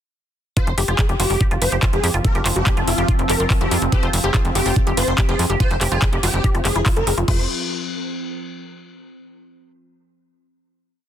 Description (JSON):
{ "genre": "psychedelic trance", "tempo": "143 BPM", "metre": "4/4", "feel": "straight", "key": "F minor", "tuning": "A4 = 439 Hz", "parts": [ { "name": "swarming rave lead", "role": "melody", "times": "0.6-7.4 s", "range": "F4 to C5", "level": "-25 LUFS", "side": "equal", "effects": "chorus, phaser, sidechain pumping, dub echo" }, { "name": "overtone-sweeping drone", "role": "sustained chords", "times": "1.4-7.3 s", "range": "F3 to C4", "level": "-27 LUFS", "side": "left 1 dB", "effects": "chorus, built-in reverb, sidechain pumping" }, { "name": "woody wave-folded pluck", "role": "riff", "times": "0.6-7.5 s", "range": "E4 to Ab4", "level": "-27 LUFS", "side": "moving between left 4 dB and right 5 dB", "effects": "chorus, auto-pan, sidechain pumping, digital delay" }, { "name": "electronic kick drum", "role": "drums", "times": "0.6-7.4 s", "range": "none", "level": "-19 LUFS", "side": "equal", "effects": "none" }, { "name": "garage drum kit", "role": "drums", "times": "0.6-7.4 s", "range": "crash cymbal, handclaps, hi-hat", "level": "-24 LUFS", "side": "equal", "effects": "none" }, { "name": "tight sequencer bass", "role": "bass", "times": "0.7-7.5 s", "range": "F1 to F2", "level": "-21 LUFS", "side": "equal", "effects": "none" } ], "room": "digital ambience", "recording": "dense, heavily limited modern master", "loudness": "-16 LUFS", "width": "side -10 dB against mid", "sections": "0.6-7.3 drop; 7.3-9.0 final chord", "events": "drop 0.6-7.3", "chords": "0.6 F5" }